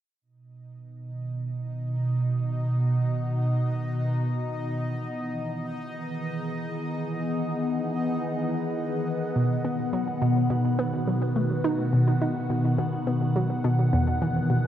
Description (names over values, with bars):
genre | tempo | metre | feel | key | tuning
ambient | 105 BPM | 4/4 | straight | unclear | A4 = 440 Hz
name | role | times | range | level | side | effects
phased analog pad | sustained chords | 0.2-14.7 s | B2 to F#5 | -26 LUFS | equal | phaser, chorus
bubbling stepped-filter texture | texture | 1.2-9.4 s | D#4 to D#5 | -37 LUFS | left 1 dB | chorus, built-in reverb
hollow square pluck | riff | 9.4-14.7 s | E2 to D#4 | -25 LUFS | right 1 dB | chorus, phaser, cassette tape, tape echo
room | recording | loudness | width
wet cathedral reverb, RT60 5.5 s | in a vast, echoing space | -24 LUFS | side -11 dB against mid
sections
0.2-9.4 A section; 9.4-14.7 B section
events
fade-in on synth texture 0.2-9.4; filter sweep on analog synth pad 0.2-9.4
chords
0.2 B; 4.8 Emaj7; 9.4 B; 13.9 Emaj7(no3)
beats
| 0.22 0.79 1.36 1.93 | 2.50 3.08 3.65 4.22 | 4.79 5.36 5.93 6.50 | 7.08 7.65 8.22 8.79 | 9.36 9.93 10.50 11.07 | 11.65 12.22 12.79 13.36 | 13.93 14.50